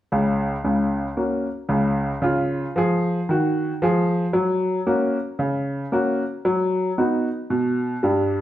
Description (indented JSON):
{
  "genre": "jazz, stride piano",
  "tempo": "114 BPM",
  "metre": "4/4",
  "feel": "swing 65% on 8ths",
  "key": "F# major",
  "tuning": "A4 = 440 Hz",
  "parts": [
    { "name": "clear upright piano", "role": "solo", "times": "0.1-8.4 s", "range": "C#2 to G#4", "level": "-20 LUFS", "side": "equal", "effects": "none" }
  ],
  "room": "wet studio reverb, RT60 0.9 s",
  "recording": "heard from further back in the room",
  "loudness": "-20 LUFS",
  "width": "side -13 dB against mid",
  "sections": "0.1-8.4 A section",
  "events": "none",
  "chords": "0.1 F#/C#; 2.2 C#; 4.3 F#; 6.4 B/F#"
}